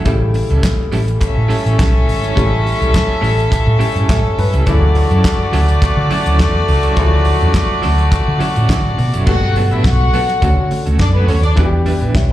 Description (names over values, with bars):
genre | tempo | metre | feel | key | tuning
disco | 104 BPM | 4/4 | straight | D major | A4 = 440 Hz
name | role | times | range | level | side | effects
rich studio violin section | second line | 0.0-11.5 s | A3 to F#5 | -19 LUFS | left 1 dB | slapback echo
electric guitar at the edge of break-up | accompaniment | 0.0-12.3 s | F#3 to B4 | -24 LUFS | right 5 dB | tremolo
warm concert grand piano | accompaniment | 0.0-12.3 s | Bb2 to E5 | -22 LUFS | left 4 dB | slapback echo
hollow-body short-scale fingered electric bass | bass | 0.0-12.3 s | F#1 to D3 | -14 LUFS | equal | none
damped 70s drum kit | drums | 0.1-12.3 s | crash cymbal, hi-hat, kick drum, snare drum | -18 LUFS | equal | none
group handclap | percussion | 0.6-8.8 s | none | -31 LUFS | right 4 dB | none
room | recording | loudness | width
studio reverb | live gig heard through the venue's PA, club reverb | -12 LUFS | side -14 dB against mid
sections
0.0-9.3 A section; 9.3-12.3 B section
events
grand piano fill 3.8-4.7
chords
0.1 A7; 4.7 Dmaj9; 9.3 Gmaj9; 10.4 Dmaj7; 11.6 Em7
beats
| 0.06 0.64 1.22 1.79 | 2.37 2.94 3.52 4.09 | 4.67 5.25 5.82 6.40 | 6.97 7.55 8.12 8.70 | 9.28 9.85 10.43 11.00 | 11.58 12.16